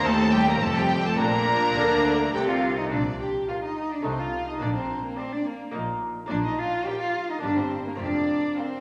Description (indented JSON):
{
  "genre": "classical, baroque-style concerto movement with solo episodes",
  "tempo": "106 BPM",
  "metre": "3/4",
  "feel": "straight",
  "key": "Bb major",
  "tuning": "A4 = 442 Hz",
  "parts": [
    { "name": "dark cello", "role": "melody", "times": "0.0-8.8 s", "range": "G3 to G4", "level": "-29 LUFS", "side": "equal", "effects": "none" },
    { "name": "rich chamber violin section", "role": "melody", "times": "0.0-8.8 s", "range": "Bb4 to Bb5", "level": "-33 LUFS", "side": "equal", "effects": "none" },
    { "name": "rich chamber violin section", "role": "second line", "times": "0.0-8.8 s", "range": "G4 to F5", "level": "-32 LUFS", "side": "equal", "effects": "none" },
    { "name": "lute", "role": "accompaniment", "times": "0.0-8.8 s", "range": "Eb2 to F4", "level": "-34 LUFS", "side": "equal", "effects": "none" },
    { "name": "rich chamber viola section", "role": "accompaniment", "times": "0.0-8.8 s", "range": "C4 to Bb4", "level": "-36 LUFS", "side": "equal", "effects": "none" },
    { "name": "clear chamber double bass section", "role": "bass", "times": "0.0-8.5 s", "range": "F1 to Eb2", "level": "-36 LUFS", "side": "equal", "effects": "none" },
    { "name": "rich studio cello section", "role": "bass", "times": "0.0-8.4 s", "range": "Eb2 to D3", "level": "-35 LUFS", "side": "equal", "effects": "none" }
  ],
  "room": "wet recital hall reverb, RT60 1.4 s",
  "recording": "none",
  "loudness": "-25 LUFS",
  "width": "mono",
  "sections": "0.0-2.9 A section; 2.9-8.8 B section",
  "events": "none",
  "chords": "0.1 Cm/Eb; 0.6 F5; 1.2 Bb; 4.1 F7/C; 4.6 Bb; 5.7 Eb5/Bb; 6.3 Bb; 7.4 Gm; 8.0 Fsus4"
}